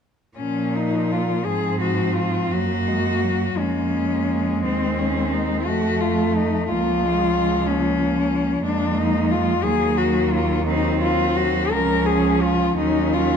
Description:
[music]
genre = classical, lyrical piece for cello ensemble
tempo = 53-64 BPM (dotted quarters)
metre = 6/8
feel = rubato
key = Bb minor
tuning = A4 = 440 Hz
[part]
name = rich cello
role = melody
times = 0.4-13.4 s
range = C4 to Bb4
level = -22 LUFS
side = left 5 dB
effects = none
[part]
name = rich cello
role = second line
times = 0.4-13.4 s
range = Ab3 to Db4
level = -26 LUFS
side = right 7 dB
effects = none
[part]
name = warm cello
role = accompaniment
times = 0.4-13.4 s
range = F3 to A3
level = -25 LUFS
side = equal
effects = none
[part]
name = rich cello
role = bass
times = 0.4-13.4 s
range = Db2 to Bb2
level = -25 LUFS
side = right 2 dB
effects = none
[sound]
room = moderate scoring stage reverb, RT60 1.8 s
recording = dark, warm production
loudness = -18 LUFS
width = side -7 dB against mid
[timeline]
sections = 0.4-13.4 A section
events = none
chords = 0.4 Bb5; 1.5 Fm/Ab; 2.5 Gb; 4.6 Abadd11/Eb; 5.7 F; 6.7 Bbm/Db; 8.6 Bb5/F; 9.6 Ebm; 11.7 Db; 12.8 Ebm7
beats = | 0.37 1.46 | 2.52 3.57 | 4.64 5.67 | 6.69 7.67 | 8.64 9.63 | 10.67 11.72 | 12.77

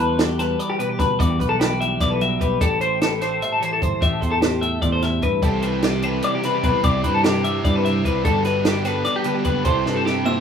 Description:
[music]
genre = math rock and midwest emo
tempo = 298 BPM (eighths)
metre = 7/8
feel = straight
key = C lydian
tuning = A4 = 440 Hz
[part]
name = twelve-string electric guitar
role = accompaniment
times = 0.0-10.4 s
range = A2 to C5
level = -27 LUFS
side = right 9 dB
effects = none
[part]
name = twelve-string electric guitar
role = arpeggios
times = 0.0-10.4 s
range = G4 to E5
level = -21 LUFS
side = left 4 dB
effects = spring reverb, analog delay
[part]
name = fingered electric bass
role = bass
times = 0.0-10.4 s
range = F#1 to G2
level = -24 LUFS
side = equal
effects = none
[part]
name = compact cocktail drum kit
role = drums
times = 0.2-10.4 s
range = hi-hat, kick drum, snare drum, toms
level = -23 LUFS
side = right 1 dB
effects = none
[part]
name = biting overdriven guitar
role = riff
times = 5.4-10.4 s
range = G2 to E4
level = -26 LUFS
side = right 4 dB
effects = none
[part]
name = glockenspiel with brass mallets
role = melody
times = 10.3-10.4 s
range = E6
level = -29 LUFS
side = right 5 dB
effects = none
[sound]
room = light reverb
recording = rough home demo mix, small room ambience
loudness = -18 LUFS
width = side -7 dB against mid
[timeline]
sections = 0.0-10.4 A section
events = drum fill 9.9-10.4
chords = 0.0 Em9; 2.6 Am7; 5.4 Cmaj9; 8.2 Gmaj9; 9.7 C6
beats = 0.18 0.39 0.59 0.79 0.99 | 1.19 1.40 1.60 1.80 2.00 2.20 2.40 | 2.60 2.81 3.01 3.21 3.41 3.61 3.81 | 4.02 4.22 4.42 4.62 4.82 5.02 5.23 | 5.43 5.63 5.83 6.03 6.23 6.44 6.64 | 6.84 7.04 7.24 7.44 7.64 7.85 8.05 | 8.25 8.45 8.65 8.86 9.06 9.26 9.46 | 9.66 9.87 10.07 10.27

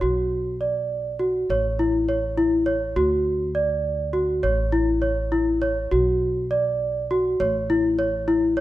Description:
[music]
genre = contemporary instrumental, chamber music in an uneven meter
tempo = 203 BPM (eighths)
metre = 5/8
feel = straight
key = unclear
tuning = A4 = 440 Hz
[part]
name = celesta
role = arpeggios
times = 0.0-8.6 s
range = E4 to D5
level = -21 LUFS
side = equal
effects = none
[part]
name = upright bass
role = bass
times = 0.0-8.6 s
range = A1 to D2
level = -28 LUFS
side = equal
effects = none
[sound]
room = moderate recital hall reverb, RT60 1.4 s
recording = none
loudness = -20 LUFS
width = side -15 dB against mid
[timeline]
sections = 0.0-8.6 A section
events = none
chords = 0.0 Bm; 1.5 A; 3.0 D; 4.4 A; 5.9 Bm; 7.4 A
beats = | 0.03 0.32 0.62 0.92 1.21 | 1.50 1.80 2.09 2.38 2.67 | 2.97 3.26 3.55 3.85 4.14 | 4.44 4.74 5.03 5.33 5.62 | 5.92 6.21 6.51 6.81 7.10 | 7.40 7.70 7.99 8.28 8.57

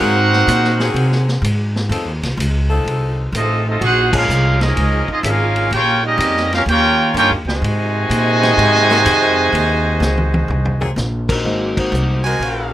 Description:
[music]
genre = jazz, big band swing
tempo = 126 BPM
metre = 4/4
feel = swing 66% on 8ths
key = Ab major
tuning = A4 = 440 Hz
[part]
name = brilliant trumpet section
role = melody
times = 0.0-10.9 s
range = C4 to Ab5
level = -16 LUFS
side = equal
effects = none
[part]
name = clear trombone section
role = second line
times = 0.0-10.9 s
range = C3 to G4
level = -21 LUFS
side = right 3 dB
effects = none
[part]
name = bright saxophone section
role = sustained chords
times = 0.0-10.9 s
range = F3 to A4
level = -24 LUFS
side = left 3 dB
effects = none
[part]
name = upright bass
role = bass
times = 0.0-12.7 s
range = Ab1 to C3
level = -18 LUFS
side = equal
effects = none
[part]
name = vintage drum kit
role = drums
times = 0.3-12.6 s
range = crash cymbal, hi-hat, kick drum, ride cymbal, snare drum, toms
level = -24 LUFS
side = equal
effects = none
[part]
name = warm saxophone section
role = melody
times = 11.3-12.7 s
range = Gb3 to F5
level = -23 LUFS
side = left 3 dB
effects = none
[part]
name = warm grand piano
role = accompaniment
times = 11.4-12.2 s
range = Ab3 to Gb4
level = -22 LUFS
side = left 1 dB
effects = none
[part]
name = bright trumpet section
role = stabs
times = 12.2-12.7 s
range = Gb4 to Ab5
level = -20 LUFS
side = right 1 dB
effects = none
[sound]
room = light reverb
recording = rough home demo mix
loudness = -13 LUFS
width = side -13 dB against mid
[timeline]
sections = 0.0-11.4 A section; 11.4-12.7 B section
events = band accent 4.0, 11.2, 11.7; drum fill 10.0-11.0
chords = 0.0 Ab9; 1.9 F7; 3.8 Bbm7; 5.7 Eb9; 7.6 Ab9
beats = | 0.00 0.47 0.95 1.43 | 1.90 2.38 2.86 3.33 | 3.81 4.29 4.76 5.24 | 5.72 6.19 6.67 7.15 | 7.63 8.10 8.58 9.06 | 9.54 10.01 10.49 10.97 | 11.45 11.93 12.41

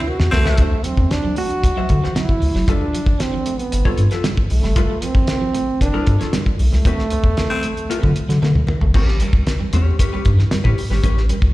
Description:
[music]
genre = funk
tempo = 115 BPM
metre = 4/4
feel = straight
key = unclear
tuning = A4 = 440 Hz
[part]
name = warm trombone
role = melody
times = 0.0-8.6 s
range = A3 to F#4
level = -23 LUFS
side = right 2 dB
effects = slapback echo
[part]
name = cowbell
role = percussion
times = 0.1-0.4, 4.8-11.4 s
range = none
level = -35 LUFS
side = left 5 dB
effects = slapback echo
[part]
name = round analog bass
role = bass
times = 0.2-11.5 s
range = F#1 to D3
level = -16 LUFS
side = equal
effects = none
[part]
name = cloth-damped thuddy drum kit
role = drums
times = 0.2-11.5 s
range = crash cymbal, hi-hat, kick drum, snare drum, toms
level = -20 LUFS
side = equal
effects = none
[part]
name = raspy baritone saxophone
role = second line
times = 0.3-0.7, 7.5-7.7 s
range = C4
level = -23 LUFS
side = left 2 dB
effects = slapback echo
[part]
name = hollow-body jazz guitar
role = accompaniment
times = 0.5-11.2 s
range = C4 to F#5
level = -26 LUFS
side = left 4 dB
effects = slapback echo
[part]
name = electric guitar at the edge of break-up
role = riff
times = 0.6-11.4 s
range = E3 to D4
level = -28 LUFS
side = right 4 dB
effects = ensemble chorus, slapback echo
[sound]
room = little or no reverb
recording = live gig heard through the venue's PA, recital hall reverb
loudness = -15 LUFS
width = side -18 dB against mid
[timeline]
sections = 0.6-8.9 A section; 8.9-11.5 B section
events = break 0.0-0.6; drum fill 0.0-0.6, 8.4-8.9; band accent 6.9-8.9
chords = 0.0 D9 (rootless); 0.6 D9; 2.7 G9; 6.9 D13; 8.9 A9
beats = 0.07 | 0.59 1.11 1.63 2.16 | 2.68 3.20 3.72 4.25 | 4.77 5.29 5.81 6.34 | 6.86 7.38 7.90 8.42 | 8.95 9.47 9.99 10.51 | 11.03

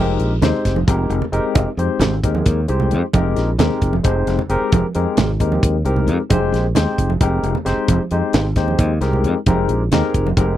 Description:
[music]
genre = electric jazz fusion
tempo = 266 BPM (eighths)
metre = 7/8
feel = straight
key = F minor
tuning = A4 = 440 Hz
[part]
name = barky tine electric piano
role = accompaniment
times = 0.0-10.6 s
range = Ab3 to C5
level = -20 LUFS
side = left 4 dB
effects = medium stereo tremolo, lush chorus
[part]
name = fingered electric bass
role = bass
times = 0.0-10.6 s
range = F1 to F2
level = -19 LUFS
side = equal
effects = none
[part]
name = tight funk drum kit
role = drums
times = 0.2-10.5 s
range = hi-hat, kick drum, snare drum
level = -18 LUFS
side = equal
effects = none
[part]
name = congas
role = percussion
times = 0.2-10.4 s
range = none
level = -23 LUFS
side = right 6 dB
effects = none
[sound]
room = little or no reverb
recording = dry, close 1970s-style studio recording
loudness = -15 LUFS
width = side -12 dB against mid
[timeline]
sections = 0.0-10.6 A section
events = none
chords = 0.0 Fm11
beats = 0.20 0.43 0.65 0.88 1.11 1.33 | 1.56 1.78 2.01 2.24 2.46 2.69 2.92 | 3.14 3.37 3.59 3.82 4.05 4.27 4.50 | 4.72 4.95 5.18 5.40 5.63 5.86 6.08 | 6.31 6.53 6.76 6.98 7.21 7.44 7.66 | 7.89 8.11 8.34 8.56 8.79 9.02 9.24 | 9.47 9.69 9.92 10.14 10.37

